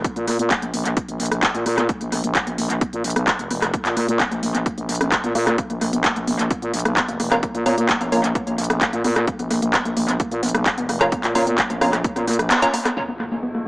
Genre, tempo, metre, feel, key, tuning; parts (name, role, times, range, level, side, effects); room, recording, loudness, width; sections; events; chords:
driving peak-time techno; 130 BPM; 4/4; straight; Bb phrygian; A4 = 439 Hz
warbly dusty pluck; riff; 0.0-13.7 s; Bb3 to Db4; -25 LUFS; equal; chorus, sidechain pumping, dub echo
growling FM bass; bass; 0.0-12.5 s; F1 to Bb2; -23 LUFS; equal; tube saturation, sidechain pumping
electronic kick drum; drums; 0.0-12.1 s; -26 LUFS; equal; overdrive
techno drum kit; drums; 0.0-12.9 s; handclaps, hi-hat, rim click; -22 LUFS; equal; overdrive, low-pass filter on hats, low-pass filter on cymbals, low-pass filter on snare, analog delay
wavetable chord stab; stabs; 7.3-8.2, 11.0-12.7 s; Db4 to Bb4; -22 LUFS; equal; sidechain pumping, analog delay
metallic inharmonic drone; drone; 13.1-13.7 s; Bb2 to F3; -36 LUFS; equal; chorus, built-in reverb, sidechain pumping
impact; sound effects; 13.0-13.7 s; -34 LUFS; equal
moderate plate reverb, RT60 1.2 s, digital ambience; echo-heavy mix, small speaker sound; -18 LUFS; side -24 dB against mid
0.0-13.0 A section
filter sweep on synth arpeggio sound 0.0-13.0; band accent 12.5; impact 13.0-13.7
0.0 N.C.; 13.0 Bb5